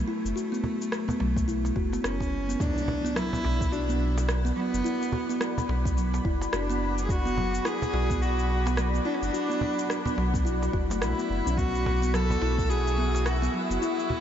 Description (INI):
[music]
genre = organic downtempo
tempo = 107 BPM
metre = 4/4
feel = swing 59% on 16ths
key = B minor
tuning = A4 = 440 Hz
[part]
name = warm cello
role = melody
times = 0.0-14.2 s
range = A3 to A4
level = -31 LUFS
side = equal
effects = tape echo
[part]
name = kalimba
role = arpeggios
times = 0.0-14.2 s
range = F#3 to F#4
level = -31 LUFS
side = left 1 dB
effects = tape echo
[part]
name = warm sub bass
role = bass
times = 0.0-13.8 s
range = F#1 to B1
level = -28 LUFS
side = equal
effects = tube saturation, sidechain pumping
[part]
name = electronic cabasa and rim click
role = drums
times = 0.3-14.1 s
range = none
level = -37 LUFS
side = equal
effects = overdrive
[part]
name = cajon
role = percussion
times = 0.6-14.2 s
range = none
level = -37 LUFS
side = right 2 dB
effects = none
[part]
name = electronic kick drum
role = drums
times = 1.4-12.7 s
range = none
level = -30 LUFS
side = equal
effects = overdrive
[part]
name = granular cloud pad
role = sustained chords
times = 3.8-14.2 s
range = F#4 to C#6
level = -34 LUFS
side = equal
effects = built-in reverb, analog chorus, sidechain pumping
[part]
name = impact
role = sound effects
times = 2.6-4.8 s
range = none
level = -38 LUFS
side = equal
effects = none
[part]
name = wind-like tuned noise texture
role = texture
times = 12.3-14.2 s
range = E5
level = -42 LUFS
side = right 3 dB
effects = built-in reverb, lush chorus
[sound]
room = moderate huge ambient reverb, RT60 7.7 s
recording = dreamy mix soaked in reverb, nothing above 7.6 kHz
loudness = -24 LUFS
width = side -9 dB against mid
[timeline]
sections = 0.0-2.6 A section; 2.6-14.2 B section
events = impact 2.6-4.8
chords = 0.0 F#m7; 2.6 Bm; 11.6 F#m7